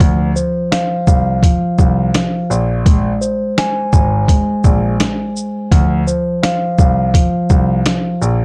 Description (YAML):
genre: hip hop, boom-bap hip-hop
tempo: 84 BPM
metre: 4/4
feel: swing 56% on 16ths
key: D minor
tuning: A4 = 440 Hz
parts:
  - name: mellow tine electric piano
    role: accompaniment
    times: 0.0-8.2 s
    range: F3 to G#5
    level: -20 LUFS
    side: equal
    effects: cassette tape, high-pass filter, low-pass filter
  - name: dark concert grand piano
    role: bass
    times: 0.0-8.4 s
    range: G#1 to D2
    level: -19 LUFS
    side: equal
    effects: none
  - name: trip hop sampler-style drum kit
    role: drums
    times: 0.0-8.4 s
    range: hi-hat, kick drum, shaker, snare drum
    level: -16 LUFS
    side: equal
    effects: none
room: little or no reverb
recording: dry, gritty hardware recording, cassette tape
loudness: -15 LUFS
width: mono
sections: 0.0-8.4 A section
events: none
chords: 0.0 Dm7 (rootless); 2.5 Bbsus2; 5.7 Dm7 (rootless)